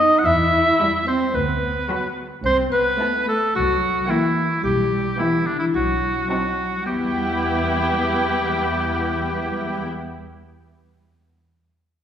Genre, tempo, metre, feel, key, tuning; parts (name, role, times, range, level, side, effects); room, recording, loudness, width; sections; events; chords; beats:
cinematic, playful, whimsical film cue; 109 BPM; 4/4; straight; E minor; A4 = 440 Hz
marimba with medium mallets; melody; 0.0-10.5 s; B3 to E5; -25 LUFS; left 4 dB
muted studio violin section; melody; 0.0-9.8 s; G5 to B5; -30 LUFS; left 1 dB
clear oboe; second line; 0.0-9.8 s; D4 to F#5; -22 LUFS; equal
muted studio violin section; second line; 0.0-9.8 s; D#4 to F#4; -30 LUFS; left 1 dB
muted studio viola section; accompaniment; 0.0-9.8 s; F#3 to C4; -30 LUFS; right 1 dB
muted studio cello section; bass; 0.0-9.8 s; D3 to E4; -26 LUFS; right 1 dB
muted studio double bass section; bass; 0.3-9.8 s; B1 to E2; -29 LUFS; right 2 dB
wet recital hall reverb, RT60 1.7 s; recorded in a church or concert hall; -18 LUFS; side -9 dB against mid
0.0-6.9 A section; 6.9-9.1 B section
0.2 Em; 1.3 Bm/D; 2.4 Am/C; 3.5 C7; 4.6 Em/B; 5.7 B7b9; 6.9 Em
| 0.25 0.80 1.35 1.90 | 2.44 2.99 3.54 4.09 | 4.64 5.19 5.74 6.30 | 6.86 7.41 7.96 8.51